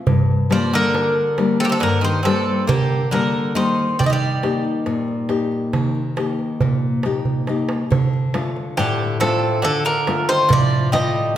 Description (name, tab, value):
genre	greek folk, Greek bouzouki band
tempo	138 BPM (eighths)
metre	9/8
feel	straight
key	D phrygian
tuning	A4 = 440 Hz
part	nylon-string guitar	accompaniment	0.1-11.4 s	G2 to G4	-21 LUFS	left 4 dB	none
part	darbuka	percussion	0.1-11.1 s	none	-21 LUFS	right 4 dB	none
part	Greek bouzouki	melody	0.5-11.3 s	G4 to Eb5	-21 LUFS	equal	none
part	Greek bouzouki	second line	0.5-11.3 s	C3 to Bb3	-24 LUFS	right 3 dB	none
room	wet recital hall reverb, RT60 1.5 s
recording	none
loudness	-17 LUFS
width	side -11 dB against mid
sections	0.0-7.9 A section; 7.9-11.4 B section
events	drum fill 7.3-7.9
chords	0.1 Gm; 4.0 Eb; 7.9 Dm